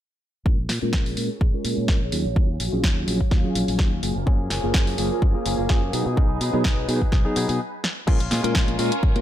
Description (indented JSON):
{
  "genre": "filtered disco house",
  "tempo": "126 BPM",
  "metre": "4/4",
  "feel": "swing 54% on 16ths",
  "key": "unclear",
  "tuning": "A4 = 440 Hz",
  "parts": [
    { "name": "bell-like tine electric piano", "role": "accompaniment", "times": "0.5-9.2 s", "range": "F#3 to A#4", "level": "-27 LUFS", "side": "equal", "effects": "phaser, vintage 12-bit sampler grit, sidechain pumping, low-pass filter" },
    { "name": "phased string machine", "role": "sustained chords", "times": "0.8-9.2 s", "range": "F#3 to A#5", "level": "-31 LUFS", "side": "equal", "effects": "ensemble chorus, phaser, sidechain pumping, low-pass filter" },
    { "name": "modern bright fingered electric bass", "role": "bass", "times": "0.5-9.2 s", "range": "F#1 to B2", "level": "-27 LUFS", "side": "equal", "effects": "sidechain pumping, low-pass filter" },
    { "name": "electronic kick drum", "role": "drums", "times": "0.5-9.1 s", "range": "none", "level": "-20 LUFS", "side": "equal", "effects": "none" },
    { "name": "house drum kit", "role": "drums", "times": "0.7-9.2 s", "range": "crash cymbal, hi-hat, snare drum", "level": "-28 LUFS", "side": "equal", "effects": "sidechain pumping on hats, sidechain pumping on cymbals" },
    { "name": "direct-recorded clean electric guitar", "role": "riff", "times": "4.3-9.2 s", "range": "E#3 to G#4", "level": "-31 LUFS", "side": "left 3 dB", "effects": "sidechain pumping, low-pass filter" },
    { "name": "egg shaker and congas", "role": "percussion", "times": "8.1-9.2 s", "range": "none", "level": "-28 LUFS", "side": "right 1 dB", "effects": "sidechain pumping on perc, low-pass filter on perc" }
  ],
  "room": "little or no reverb",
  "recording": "none",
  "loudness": "-20 LUFS",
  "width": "side -12 dB against mid",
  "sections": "0.5-8.1 A section; 8.1-9.2 B section",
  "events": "filter sweep 0.5-8.1, 8.1-9.2; stop 7.6-8.1; drum fill 7.8",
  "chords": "0.5 A#m7; 2.1 D#m11; 4.0 F#maj9; 5.9 B6; 8.1 A#m7"
}